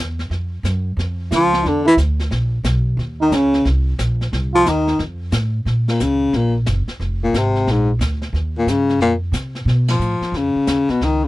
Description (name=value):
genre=jazz, small-group swing and bop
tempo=179 BPM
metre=4/4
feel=swing 64% on 8ths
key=Bb minor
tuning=A4 = 440 Hz
part: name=upright bass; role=bass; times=0.0-11.3 s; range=F1 to C3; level=-19 LUFS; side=equal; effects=none
part: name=vintage brush drum kit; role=drums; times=0.2-11.3 s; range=brushed snare drum, hi-hat, ride cymbal, snare drum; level=-26 LUFS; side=equal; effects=none
part: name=warm trombone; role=second line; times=1.3-5.0 s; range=Db4 to F4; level=-19 LUFS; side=right 6 dB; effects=none
part: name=clear baritone saxophone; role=melody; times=1.4-11.3 s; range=Ab2 to F3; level=-16 LUFS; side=left 2 dB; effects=none
room=little or no reverb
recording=dry, close 1970s-style studio recording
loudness=-16 LUFS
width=side -17 dB against mid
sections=0.0-5.7 A section; 5.7-11.3 B section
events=band accent 9.8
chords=0.3 Db; 1.6 E5; 3.0 Eb5; 4.3 Cmadd11; 5.0 F; 5.7 Bbm; 7.0 Fm; 7.7 Bb; 8.3 Ebadd9; 9.7 B9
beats=| 0.31 0.64 0.98 1.31 | 1.65 1.98 2.32 2.65 | 2.98 3.32 3.65 3.99 | 4.32 4.66 4.99 5.32 | 5.66 5.99 6.33 6.66 | 7.00 7.33 7.67 8.00 | 8.33 8.67 9.00 9.34 | 9.67 10.01 10.34 10.68 | 11.01